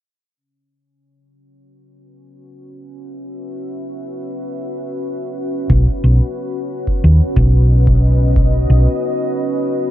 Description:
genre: ambient dub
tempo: free time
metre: none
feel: none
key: unclear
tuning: A4 = 440 Hz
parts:
  - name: deep dark ambient pad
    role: sustained chords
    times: 2.6-9.9 s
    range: C#4 to E5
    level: -22 LUFS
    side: equal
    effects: chorus, built-in reverb
  - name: hollow-body short-scale fingered electric bass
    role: bass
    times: 5.7-8.9 s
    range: B1 to D#2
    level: -11 LUFS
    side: equal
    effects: none
  - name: electronic kick drum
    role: drums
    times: 5.7-8.5 s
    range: none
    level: -18 LUFS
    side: equal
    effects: none
room: digital ambience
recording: dark, warm production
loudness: -13 LUFS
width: side -13 dB against mid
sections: 0.4-9.9 A section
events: fade-in on ambient pad 0.4-9.9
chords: 0.4 F#5; 5.7 B

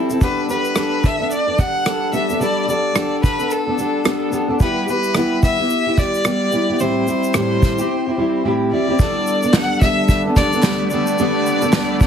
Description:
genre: acoustic pop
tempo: 109 BPM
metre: 4/4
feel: swing 60% on 16ths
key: G major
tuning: A4 = 440 Hz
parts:
  - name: fingerpicked plugged-in steel-string acoustic guitar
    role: accompaniment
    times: 0.0-12.1 s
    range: A2 to A4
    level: -19 LUFS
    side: equal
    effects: double-tracked left and right
  - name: unplugged drum kit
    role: drums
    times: 0.1-12.1 s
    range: kick drum, rim click, shaker, snare drum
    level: -18 LUFS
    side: equal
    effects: none
  - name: warm violin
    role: melody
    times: 0.2-12.1 s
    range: A4 to F#5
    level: -21 LUFS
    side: left 1 dB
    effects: none
  - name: granular cloud pad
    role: sustained chords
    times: 10.0-12.1 s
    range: D3 to B4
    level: -28 LUFS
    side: right 2 dB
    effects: built-in reverb
  - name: group handclap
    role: percussion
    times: 9.5-11.9 s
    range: none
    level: -31 LUFS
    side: right 3 dB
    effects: none
room: moderate studio reverb, RT60 0.8 s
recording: heavily compressed radio sound, multiband compression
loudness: -15 LUFS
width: side -8 dB against mid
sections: 0.0-9.0 A section; 9.0-12.1 B section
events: none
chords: 0.2 Gadd9; 4.6 Em/G; 6.8 Am7; 9.0 Gadd9

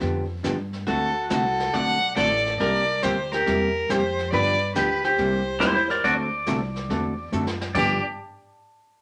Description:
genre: country, western swing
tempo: 140 BPM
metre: 4/4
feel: swing 67% on 8ths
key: unclear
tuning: A4 = 442 Hz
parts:
  - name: hollow-body jazz guitar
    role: accompaniment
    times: 0.0-8.0 s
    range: G2 to A4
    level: -29 LUFS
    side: equal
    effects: none
  - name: upright bass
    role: bass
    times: 0.0-8.0 s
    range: G1 to G2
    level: -34 LUFS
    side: equal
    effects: none
  - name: jazz brush drum kit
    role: drums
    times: 0.0-8.1 s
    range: brushed snare drum, crash cymbal, hi-hat, kick drum, snare drum, toms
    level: -37 LUFS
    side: equal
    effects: none
  - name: warm fiddle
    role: melody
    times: 0.9-8.0 s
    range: G4 to F#5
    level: -27 LUFS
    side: equal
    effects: none
  - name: metal-body resonator slide guitar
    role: second line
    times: 0.9-8.0 s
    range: D4 to D5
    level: -29 LUFS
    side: equal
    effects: none
  - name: pedal steel guitar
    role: second line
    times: 5.6-8.0 s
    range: E4 to D5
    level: -26 LUFS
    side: equal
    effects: none
room: wet studio reverb, RT60 0.6 s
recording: none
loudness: -23 LUFS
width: mono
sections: 0.0-7.8 A section; 7.8-9.0 B section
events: drum fill 7.3-7.8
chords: 0.0 G7; 0.9 D7; 2.6 C7; 4.3 G7; 5.2 C7; 6.0 D7; 7.8 G7

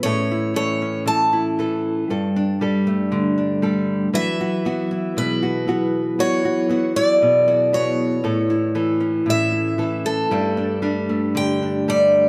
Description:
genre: acoustic folk-pop ballad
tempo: 58 BPM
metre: 4/4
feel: straight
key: A major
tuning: A4 = 440 Hz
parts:
  - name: picked steel-string acoustic guitar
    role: melody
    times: 0.0-12.3 s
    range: A4 to A5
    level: -23 LUFS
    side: equal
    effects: tape echo
  - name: nylon-string guitar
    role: accompaniment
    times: 0.0-12.3 s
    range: G2 to A4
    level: -25 LUFS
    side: equal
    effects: none
  - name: vibraphone with medium mallets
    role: arpeggios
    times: 0.0-12.3 s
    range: F#3 to A4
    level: -26 LUFS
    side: equal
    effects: none
room: moderate studio reverb, RT60 0.6 s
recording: none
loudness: -20 LUFS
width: mono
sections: 0.0-12.3 A section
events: none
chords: 0.0 A; 2.1 Gsus2; 4.1 Eadd9; 8.2 A; 10.3 Gsus2

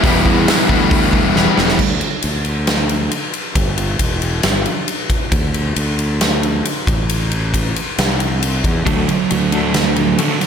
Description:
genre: quiet-loud alternative rock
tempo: 136 BPM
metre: 4/4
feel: straight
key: E minor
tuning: A4 = 440 Hz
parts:
  - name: distorted electric guitar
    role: riff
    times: 0.0-1.8 s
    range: E3 to B4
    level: -16 LUFS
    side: left 11 dB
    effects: distortion, slapback echo
  - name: thick fuzz guitar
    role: riff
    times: 0.0-1.8, 8.9-10.5 s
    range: D3 to B4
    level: -18 LUFS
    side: right 10 dB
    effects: distortion, slapback echo
  - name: fuzz fingered electric bass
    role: bass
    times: 0.0-10.2 s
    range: E1 to E2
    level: -19 LUFS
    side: equal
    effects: overdrive
  - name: huge arena drum kit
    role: drums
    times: 0.0-10.5 s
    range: crash cymbal, hi-hat, kick drum, ride cymbal, snare drum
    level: -17 LUFS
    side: equal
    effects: none
  - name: twelve-string electric guitar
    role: arpeggios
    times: 8.9-10.5 s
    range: D3 to A3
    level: -20 LUFS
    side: left 4 dB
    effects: tremolo, tape echo, slapback echo
room: moderate scoring stage reverb, RT60 1.6 s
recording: big arena sound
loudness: -14 LUFS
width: side -7 dB against mid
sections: 0.0-1.8 A section; 1.8-10.5 B section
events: drum fill 1.4-1.8; half time 1.8-10.5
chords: 0.0 Em; 1.8 N.C.; 3.6 Em; 5.3 N.C.; 6.9 Am; 8.9 D

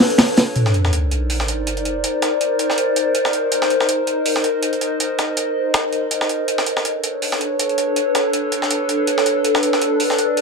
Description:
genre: drum and bass, jungle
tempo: 162 BPM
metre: 4/4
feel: swing 55% on 16ths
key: unclear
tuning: A4 = 439 Hz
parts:
  - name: warbly tape-like pad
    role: sustained chords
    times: 0.0-10.4 s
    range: D4 to Eb5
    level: -18 LUFS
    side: left 1 dB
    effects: chorus, built-in reverb, phaser, vintage 12-bit sampler grit
  - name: breakbeat sampler-style drum kit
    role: drums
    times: 0.0-10.4 s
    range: hi-hat, snare drum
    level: -22 LUFS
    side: right 1 dB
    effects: high-pass filter on hats, high-pass filter on snare, high-pass filter on room
  - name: crunchy breakbeat drum kit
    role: drums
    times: 0.0-0.5 s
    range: hi-hat, snare drum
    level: -14 LUFS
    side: equal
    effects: none
  - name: sub drop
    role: sound effects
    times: 0.6-2.0 s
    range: none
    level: -19 LUFS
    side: equal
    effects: none
room: wet echo chamber reverb, RT60 1.2 s, small room ambience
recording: none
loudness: -16 LUFS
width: side -4 dB against mid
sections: 0.6-10.4 A section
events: break 0.0-0.6; impact 0.6-2.0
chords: 0.0 Bm9; 0.6 Cm9; 6.5 Bm9

